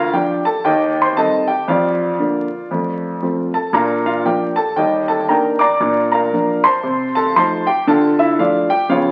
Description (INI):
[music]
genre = jazz, stride piano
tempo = 116 BPM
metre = 4/4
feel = swing 60% on 8ths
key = Bb major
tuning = A4 = 440 Hz
[part]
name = warm baby grand piano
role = solo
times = 0.0-9.1 s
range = D2 to D6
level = -17 LUFS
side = equal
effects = none
[sound]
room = wet large studio reverb, RT60 1.2 s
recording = very old 78 rpm record, vinyl crackle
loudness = -17 LUFS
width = mono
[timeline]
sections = 0.0-9.1 A section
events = none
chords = 0.0 Bb/D; 0.6 Cm/Eb; 1.7 Bb/F; 2.7 F; 3.7 Bb; 4.8 Ebmaj7; 5.8 Bb; 6.8 F7/C; 7.9 Dm